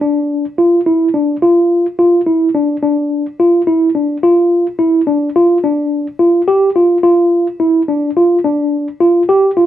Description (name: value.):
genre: progressive instrumental, progressive.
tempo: 107 BPM.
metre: 5/4.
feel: straight.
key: unclear.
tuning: A4 = 437 Hz.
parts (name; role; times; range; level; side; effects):
mellow tine electric piano; solo; 0.0-9.7 s; D4 to G4; -10 LUFS; equal; medium stereo tremolo.
room: light reverb.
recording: worn, warbling old tape, cassette tape, warbly pitch drift.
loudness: -10 LUFS.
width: side -12 dB against mid.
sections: 0.0-4.2 A section; 4.2-9.7 B section.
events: none.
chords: none.